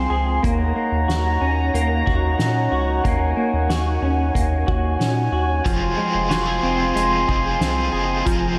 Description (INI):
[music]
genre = dream pop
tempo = 92 BPM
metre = 4/4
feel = straight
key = Eb dorian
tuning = A4 = 440 Hz
[part]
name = mellow brass ensemble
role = sustained chords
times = 0.0-8.6 s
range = Eb4 to C6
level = -25 LUFS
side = equal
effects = none
[part]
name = semi-hollow electric guitar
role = arpeggios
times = 0.0-8.6 s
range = F3 to Ab4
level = -26 LUFS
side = equal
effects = ensemble chorus, tape echo
[part]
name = round analog bass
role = bass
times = 0.0-8.6 s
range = F1 to Bb2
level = -25 LUFS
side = equal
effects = none
[part]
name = soft-mallet drum kit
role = drums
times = 0.4-8.4 s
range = hi-hat, kick drum, snare drum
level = -28 LUFS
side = equal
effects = none
[part]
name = biting overdriven guitar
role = accompaniment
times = 5.6-8.6 s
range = F3 to F4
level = -29 LUFS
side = equal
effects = tremolo, subtle chorus
[sound]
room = wet lush hall reverb, RT60 2.9 s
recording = dreamy mix soaked in reverb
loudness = -20 LUFS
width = mono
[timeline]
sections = 0.0-8.6 A section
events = none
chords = 0.4 Ebm7; 5.7 Fm